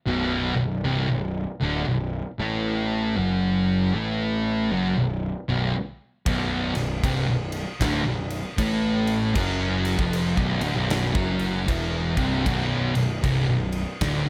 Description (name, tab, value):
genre	stoner and doom metal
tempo	78 BPM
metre	4/4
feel	swing 63% on 8ths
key	B phrygian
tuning	A4 = 440 Hz
part	thick fuzz guitar	riff	0.1-14.3 s	B1 to A3	-29 LUFS	equal	distortion
part	thick fuzz guitar	riff	0.1-14.3 s	B1 to A3	-28 LUFS	equal	distortion
part	fuzz picked electric bass	bass	0.1-14.3 s	B0 to A1	-32 LUFS	equal	overdrive
part	big rock drum kit	drums	6.3-14.2 s	crash cymbal, kick drum, snare drum	-31 LUFS	equal	none
room	light reverb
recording	none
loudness	-25 LUFS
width	mono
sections	0.0-14.3 A section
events	none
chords	0.0 Bm